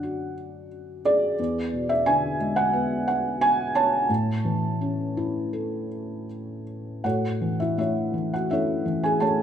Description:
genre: classical, lyrical solo piano.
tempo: 77-91 BPM.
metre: 4/4.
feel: rubato.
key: A major.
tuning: A4 = 441 Hz.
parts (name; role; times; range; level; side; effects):
felt-muted upright piano; solo; 0.0-9.4 s; E2 to A5; -23 LUFS; equal; none.
room: moderate recital hall reverb, RT60 1.6 s.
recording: minimal, uncompressed stereo recording.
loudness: -22 LUFS.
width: side -9 dB against mid.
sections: 0.0-7.0 A section; 7.0-9.4 B section.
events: none.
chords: 0.0 D/F#; 1.4 E7; 4.1 A.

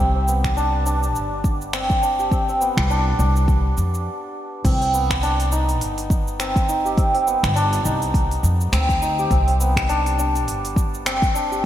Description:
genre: organic downtempo.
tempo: 103 BPM.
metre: 4/4.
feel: swing 57% on 16ths.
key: C harmonic minor.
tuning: A4 = 440 Hz.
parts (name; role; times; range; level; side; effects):
santur; arpeggios; 0.0-11.7 s; B3 to G4; -22 LUFS; equal; digital delay.
upright bass; bass; 0.0-11.7 s; G1 to F2; -22 LUFS; equal; none.
organic electronic drum kit; drums; 0.3-11.6 s; cabasa, crash cymbal, finger snaps, hi-hat; -28 LUFS; right 1 dB; overdrive, gated reverb.
electronic kick drum; drums; 0.4-11.3 s; none; -21 LUFS; equal; none.
room: moderate lush hall reverb, RT60 3.4 s.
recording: bright 1980s-style digital production.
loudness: -18 LUFS.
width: side -12 dB against mid.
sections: 0.0-4.6 A section; 4.6-11.7 B section.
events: stop 4.1-4.6.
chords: 0.0 Gsus4.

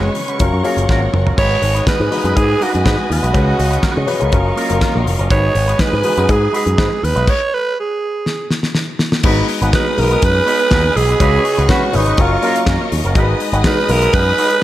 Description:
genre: disco.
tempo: 122 BPM.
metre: 4/4.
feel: straight.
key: G# dorian.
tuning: A4 = 439 Hz.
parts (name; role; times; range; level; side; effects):
raspy alto saxophone; melody; 0.0-14.6 s; G#3 to C#5; -17 LUFS; right 3 dB; none.
electric guitar with an envelope filter; accompaniment; 0.0-14.6 s; G#3 to B4; -23 LUFS; right 2 dB; none.
warm baby grand piano; accompaniment; 0.0-14.6 s; C#3 to F#5; -21 LUFS; left 3 dB; none.
clear symphonic string section; sustained chords; 0.0-14.6 s; A#4 to D#6; -24 LUFS; left 1 dB; none.
picked electric bass with an envelope filter; bass; 0.0-14.3 s; E#1 to C#3; -17 LUFS; equal; none.
damped 70s drum kit; drums; 0.1-14.6 s; crash cymbal, hi-hat, kick drum, snare drum, toms; -18 LUFS; equal; gated reverb.
room: light reverb, small room ambience.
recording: none.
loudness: -12 LUFS.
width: side -14 dB against mid.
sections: 0.0-1.4 A section; 1.4-9.2 B section; 9.2-14.6 C section.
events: grand piano fill 0.6-1.4; drum fill 0.9-1.4, 8.3-9.2; stop 7.3-9.2.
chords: 0.4 F#maj7; 1.4 G#m7; 3.3 C#7sus4; 4.3 F#maj7; 5.3 G#m7; 7.3 N.C.; 9.2 G#m7; 11.2 C#7sus4; 12.2 F#maj7; 13.2 G#m7.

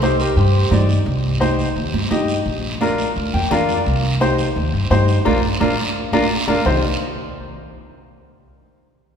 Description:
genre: latin, cumbia.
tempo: 172 BPM.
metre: 4/4.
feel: straight.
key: C minor.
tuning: A4 = 438 Hz.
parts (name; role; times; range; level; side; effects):
clean electric guitar; melody; 0.0-0.9 s; G4 to C5; -24 LUFS; right 1 dB; spring reverb.
clear upright piano; accompaniment; 0.0-6.8 s; D4 to G5; -20 LUFS; left 2 dB; none.
upright bass; bass; 0.0-6.8 s; Bb1 to G2; -20 LUFS; equal; none.
congas; percussion; 0.0-6.7 s; none; -24 LUFS; right 6 dB; none.
guiro; percussion; 0.0-6.7 s; none; -29 LUFS; right 3 dB; none.
room: wet church reverb, RT60 2.9 s.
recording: recorded in a church or concert hall.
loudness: -16 LUFS.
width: side -7 dB against mid.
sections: 0.0-1.1 A section; 1.1-6.7 B section; 6.7-8.0 C section.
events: upright piano fill 3.2-3.9; drum fill 5.3-6.7; band accent 5.3-6.7.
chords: 0.0 Cm; 2.5 Bb; 3.9 Cm; 5.3 Bb; 6.7 Cm.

